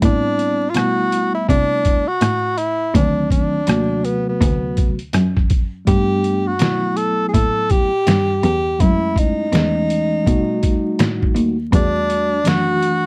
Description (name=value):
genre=hip hop, jazz-hop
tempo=82 BPM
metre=4/4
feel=swing 62% on 16ths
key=unclear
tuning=A4 = 437 Hz
part: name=breathy tenor saxophone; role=melody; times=0.0-13.1 s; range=B3 to A4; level=-22 LUFS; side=equal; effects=none
part: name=mellow tine electric piano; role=accompaniment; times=0.0-13.1 s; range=C3 to F#4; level=-24 LUFS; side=equal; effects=none
part: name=warm cello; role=bass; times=0.0-13.1 s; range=D2 to C3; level=-24 LUFS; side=equal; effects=none
part: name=trip hop sampler-style drum kit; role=drums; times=0.0-13.0 s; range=hi-hat, kick drum, rim click, snare drum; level=-21 LUFS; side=equal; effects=none
room=little or no reverb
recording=dry, close 1970s-style studio recording, vinyl crackle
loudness=-18 LUFS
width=mono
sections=0.0-13.1 A section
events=none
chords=0.0 Am9; 2.9 D7b9; 5.9 Gmaj9; 8.8 F#m7; 10.3 B7b13; 11.7 Em11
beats=| 0.02 0.75 1.49 2.22 | 2.95 3.68 4.41 5.14 | 5.88 6.61 7.34 8.07 | 8.80 9.53 10.27 11.00 | 11.73 12.46